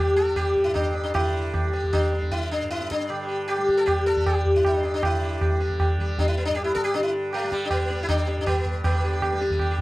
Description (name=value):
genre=indian classical, Hindustani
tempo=156 BPM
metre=5/4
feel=straight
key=G raga bhupali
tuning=A4 = 440 Hz
part: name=sitar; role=melody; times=0.0-9.8 s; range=G3 to A4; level=-24 LUFS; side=left 1 dB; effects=none
part: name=tanpura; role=drone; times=0.0-9.8 s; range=G2 to G3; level=-33 LUFS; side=right 1 dB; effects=none
part: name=tabla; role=percussion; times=0.4-9.8 s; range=none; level=-25 LUFS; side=right 1 dB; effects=none
room=moderate booth ambience, RT60 0.2 s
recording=none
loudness=-21 LUFS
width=side -18 dB against mid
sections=0.0-8.8 A section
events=speeding up 0.0-9.8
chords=none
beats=0.36 0.75 | 1.14 1.53 1.93 2.31 2.71 | 3.09 3.48 3.87 4.26 4.64 | 5.03 5.41 5.80 6.18 6.56 | 6.94 7.33 7.71 8.09 8.47 | 8.84 9.22 9.60